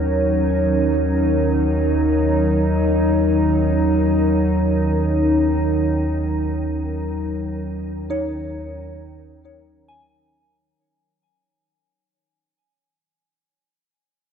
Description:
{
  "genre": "ambient",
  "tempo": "free time",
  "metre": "none",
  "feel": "none",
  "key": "Eb minor",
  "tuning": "A4 = 441 Hz",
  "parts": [
    { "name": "warbly tape-like pad", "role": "sustained chords", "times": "0.0-10.8 s", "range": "Gb3 to Db5", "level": "-19 LUFS", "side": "equal", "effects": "chorus, built-in reverb" },
    { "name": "soft synth bell", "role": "arpeggios", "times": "0.0-12.4 s", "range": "Eb4 to Ab5", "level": "-32 LUFS", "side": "equal", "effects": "chorus, phaser, ping-pong delay" },
    { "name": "warm sub bass", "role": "bass", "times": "0.0-10.7 s", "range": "Eb2", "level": "-23 LUFS", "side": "equal", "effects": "none" },
    { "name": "organ-like drone", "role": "drone", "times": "0.0-10.9 s", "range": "Eb3", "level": "-30 LUFS", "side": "right 2 dB", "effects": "ensemble chorus, built-in reverb" }
  ],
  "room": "wet cathedral reverb, RT60 5.4 s",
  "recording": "none",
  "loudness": "-17 LUFS",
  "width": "side -7 dB against mid",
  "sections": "0.0-10.8 A section",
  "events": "fade-in on synth drone 0.0-10.8; fade-out 6.0-10.8",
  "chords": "0.0 Ebm7"
}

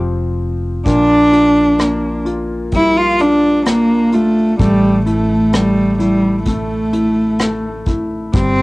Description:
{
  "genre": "acoustic folk-pop ballad",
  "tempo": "64 BPM",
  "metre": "4/4",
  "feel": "straight",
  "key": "unclear",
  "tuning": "A4 = 440 Hz",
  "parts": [
    { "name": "warm grand piano", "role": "accompaniment", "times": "0.0-8.6 s", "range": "Bb2 to F4", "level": "-20 LUFS", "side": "left 2 dB", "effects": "cassette tape, plate reverb" },
    { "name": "fingered electric bass", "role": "bass", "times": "0.0-8.6 s", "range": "F1 to Bb1", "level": "-21 LUFS", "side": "equal", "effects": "none" },
    { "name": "warm cello", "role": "melody", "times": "0.9-8.6 s", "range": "G3 to F4", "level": "-13 LUFS", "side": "equal", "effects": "cassette tape" },
    { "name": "vintage brush drum kit", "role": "drums", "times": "0.9-8.6 s", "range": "hi-hat, kick drum, rim click", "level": "-18 LUFS", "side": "equal", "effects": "cassette tape" }
  ],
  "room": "light reverb",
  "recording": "home recording on cassette",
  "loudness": "-12 LUFS",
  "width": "side -23 dB against mid",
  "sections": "0.9-8.6 A section",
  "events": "none",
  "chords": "0.0 F5; 0.9 Bb6; 4.6 A5"
}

